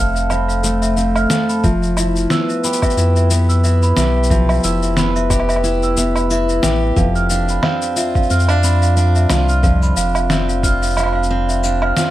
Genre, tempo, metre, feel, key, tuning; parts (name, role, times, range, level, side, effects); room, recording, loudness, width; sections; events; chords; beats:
folktronica; 90 BPM; 4/4; swing 56% on 16ths; A4 = 441 Hz
large celesta; second line; 0.0-12.1 s; E5 to F6; -21 LUFS; right 2 dB; tape echo
picked steel-string acoustic guitar; arpeggios; 0.0-12.1 s; F2 to A4; -19 LUFS; equal; low-pass filter, tape echo
warm sub bass; bass; 0.0-11.9 s; F1 to F2; -17 LUFS; equal
electronic shaker, woodblock and snare drum; drums; 0.2-12.1 s; -21 LUFS; left 1 dB; overdrive
electronic kick drum; drums; 1.6-10.8 s; -17 LUFS; equal; overdrive
light reverb; -13 LUFS; side -14 dB against mid
0.0-12.1 A section
filter sweep on steel-string acoustic guitar 0.0-12.1
0.0 F; 1.6 Em/F; 7.0 Dm13/F
0.30 0.97 | 1.64 2.30 2.97 3.64 | 4.30 4.97 5.64 6.30 | 6.97 7.64 8.30 8.97 | 9.64 10.30 10.97 11.64